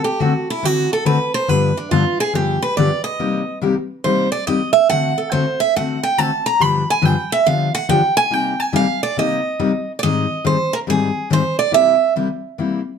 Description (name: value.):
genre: jazz.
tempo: 141 BPM.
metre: 4/4.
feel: swing 65% on 8ths.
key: C minor.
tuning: A4 = 441 Hz.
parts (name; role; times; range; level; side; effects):
picked steel-string acoustic guitar; melody; 0.0-12.1 s; D4 to B5; -17 LUFS; right 4 dB; none.
picked steel-string acoustic guitar; accompaniment; 0.2-12.8 s; G2 to A4; -19 LUFS; left 5 dB; none.
room: moderate studio reverb, RT60 0.6 s.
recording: dark, warm production.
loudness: -15 LUFS.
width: side -7 dB against mid.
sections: 0.0-10.0 A section; 10.0-13.0 B section.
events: steel-string acoustic guitar solo 0.0-10.0.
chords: 0.0 D7; 1.5 G7; 3.2 Cm7; 4.9 D7; 6.6 G7; 8.3 Cm7; 10.0 Abmaj7; 11.7 C7.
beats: 0.21 0.63 1.06 | 1.49 1.91 2.34 2.77 | 3.19 3.62 4.05 4.47 | 4.90 5.33 5.75 6.18 | 6.60 7.03 7.46 7.88 | 8.31 8.73 9.16 9.59 | 10.01 10.44 10.87 11.29 | 11.72 12.15 12.57.